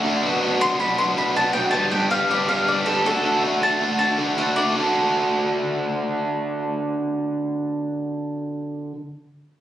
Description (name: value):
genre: rock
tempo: 159 BPM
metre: 4/4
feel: straight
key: D major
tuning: A4 = 440 Hz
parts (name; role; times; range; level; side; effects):
- biting overdriven guitar; riff; 0.0-9.0 s; G2 to A4; -21 LUFS; equal; none
- mandolin; melody; 0.6-4.7 s; A4 to C6; -22 LUFS; equal; digital delay
room: moderate echo chamber reverb, RT60 1.6 s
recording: recorded on a phone in the room, club reverb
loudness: -19 LUFS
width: side -12 dB against mid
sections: 0.0-4.7 A section; 4.7-7.8 B section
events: mandolin solo 0.0-4.7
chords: 0.2 Bm; 1.7 G; 3.1 D